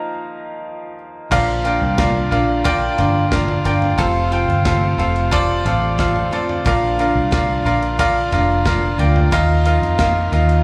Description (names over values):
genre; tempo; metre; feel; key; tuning
piano-driven pop; 90 BPM; 4/4; straight; Bb major; A4 = 438 Hz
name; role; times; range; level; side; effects
bright grand piano; accompaniment; 0.0-10.6 s; Bb2 to Bb5; -21 LUFS; equal; slapback echo
clear studio string section; sustained chords; 1.3-10.6 s; C3 to F4; -35 LUFS; equal; none
picked steel-string acoustic guitar; riff; 1.3-10.6 s; F2 to F4; -27 LUFS; equal; slapback echo
vintage muted fingered electric bass; bass; 1.3-10.6 s; F1 to F2; -22 LUFS; equal; none
modern studio drum kit; drums; 1.3-10.6 s; crash cymbal, kick drum, ride cymbal, snare drum, toms; -26 LUFS; equal; none
room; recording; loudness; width
light reverb; live gig heard through the venue's PA, club reverb; -17 LUFS; mono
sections
0.0-1.3 A section; 1.3-10.6 B section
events
grand piano solo 0.0-1.3; stop 0.0-1.3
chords
0.0 Ebsus2; 1.3 Bb; 4.0 F; 6.7 Bb; 9.3 Ebsus2